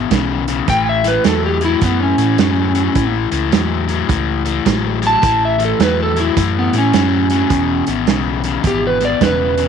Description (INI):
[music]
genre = electric blues shuffle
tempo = 106 BPM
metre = 4/4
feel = swing 64% on 8ths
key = unclear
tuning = A4 = 442 Hz
[part]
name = crunchy overdriven guitar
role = riff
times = 0.0-9.7 s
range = E2 to F#3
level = -18 LUFS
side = left 12 dB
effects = none
[part]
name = hollow-body short-scale fingered electric bass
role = bass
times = 0.0-9.7 s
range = E1 to A2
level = -21 LUFS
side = right 1 dB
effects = none
[part]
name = vintage drum kit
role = drums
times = 0.1-9.7 s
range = hi-hat, kick drum, snare drum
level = -18 LUFS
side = right 7 dB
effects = none
[part]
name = electric slide guitar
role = melody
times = 0.7-9.7 s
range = B3 to A5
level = -16 LUFS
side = right 2 dB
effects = none
[sound]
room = light reverb, small room ambience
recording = 1960s-style stereo with parts hard left and right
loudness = -13 LUFS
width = side -7 dB against mid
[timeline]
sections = 0.0-9.7 A section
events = none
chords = 0.0 E5; 0.7 A; 7.5 E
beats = 0.11 | 0.68 1.25 1.82 2.39 | 2.96 3.53 4.09 4.66 | 5.23 5.80 6.37 6.94 | 7.51 8.08 8.64 9.21